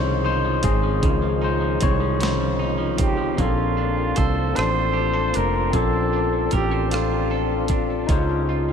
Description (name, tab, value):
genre	slow six-eight R&B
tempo	51 BPM (dotted quarters)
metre	6/8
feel	straight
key	Bb major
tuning	A4 = 440 Hz
part	electric guitar at the edge of break-up	second line	0.0-8.7 s	Db3 to C5	-30 LUFS	right 6 dB	ping-pong delay
part	overdriven tine electric piano	accompaniment	0.0-8.7 s	Eb3 to Eb5	-25 LUFS	left 8 dB	none
part	percussive tonewheel organ	sustained chords	0.0-8.7 s	Eb3 to F4	-31 LUFS	right 3 dB	overdrive, chorus vibrato, slow rotary speaker
part	woody fretless electric bass	bass	0.0-8.7 s	F1 to Db2	-24 LUFS	right 1 dB	none
part	dusty soul sampler-style drum kit	drums	0.6-8.3 s	hi-hat, kick drum, rim click, snare drum	-26 LUFS	right 1 dB	none
part	breathy flugelhorn	melody	3.0-7.8 s	F4 to C5	-24 LUFS	right 1 dB	ping-pong delay
room	wet cathedral reverb, RT60 7.5 s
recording	dreamy mix soaked in reverb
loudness	-19 LUFS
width	side -7 dB against mid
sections	0.0-3.4 A section; 3.4-8.7 B section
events	tine electric piano solo 0.0-3.4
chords	0.0 Dbmaj9; 3.4 Bbmaj9; 8.1 Dbmaj9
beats	| 1.03 2.21 | 3.38 4.56 | 5.74 6.91 | 8.09